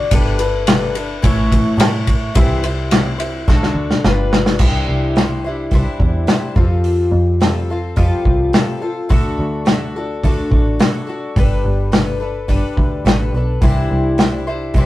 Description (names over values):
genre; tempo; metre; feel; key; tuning
folk rock and heartland rock; 106 BPM; 4/4; straight; unclear; A4 = 441 Hz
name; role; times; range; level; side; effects
picked twelve-string acoustic guitar; accompaniment; 0.0-14.9 s; A2 to D5; -20 LUFS; left 2 dB; none
deep dub picked electric bass; bass; 0.0-14.9 s; G1 to A2; -19 LUFS; equal; none
natural country drum kit; drums; 0.1-14.9 s; crash cymbal, hi-hat, kick drum, ride cymbal, snare drum; -15 LUFS; equal; none
room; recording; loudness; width
light reverb; rough rehearsal-room recording; -14 LUFS; side -16 dB against mid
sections
0.0-4.6 A section; 4.6-14.9 B section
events
drum fill 3.5-4.6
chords
0.1 Gadd9; 1.2 A; 2.3 C; 3.5 D; 4.0 G7; 4.6 Cadd9; 6.6 Fadd9; 9.1 D; 11.4 Gadd9; 13.6 Cadd9